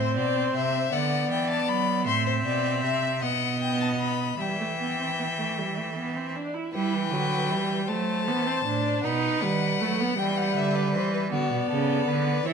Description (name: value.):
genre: classical, baroque-style fugue for string quartet.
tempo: 52 BPM (dotted quarters).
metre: 6/8.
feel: straight.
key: E minor.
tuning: A4 = 440 Hz.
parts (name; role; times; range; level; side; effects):
rich violin; melody; 0.0-12.5 s; B4 to C6; -29 LUFS; left 9 dB; none.
rich violin; second line; 0.0-12.5 s; F#4 to E5; -32 LUFS; left 4 dB; none.
rich viola; accompaniment; 0.0-12.5 s; E3 to E4; -28 LUFS; right 2 dB; none.
rich cello; bass; 0.0-12.5 s; A2 to G3; -30 LUFS; right 5 dB; none.
room: light reverb.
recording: close, detailed microphones.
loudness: -24 LUFS.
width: side -6 dB against mid.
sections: 0.0-6.7 A section; 6.7-12.5 B section.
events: none.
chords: 0.0 Amadd9; 0.9 Bm/D; 2.1 Amadd9; 3.2 B; 4.4 Em; 7.9 F#m7b5; 9.0 B7; 10.2 Em; 11.3 Bm.